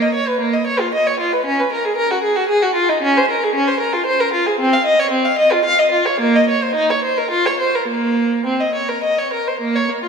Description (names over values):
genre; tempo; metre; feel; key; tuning
classical, baroque-style suite movement for unaccompanied violin; 102-117 BPM; 3/4; rubato; Bb minor from 3.0 s; A4 = 441 Hz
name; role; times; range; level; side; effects
rich violin; solo; 0.0-10.1 s; Bb3 to F5; -14 LUFS; equal; none
room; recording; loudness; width
wet church reverb, RT60 3.2 s; minimal, uncompressed stereo recording; -14 LUFS; side -6 dB against mid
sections
0.0-9.6 A section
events
none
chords
none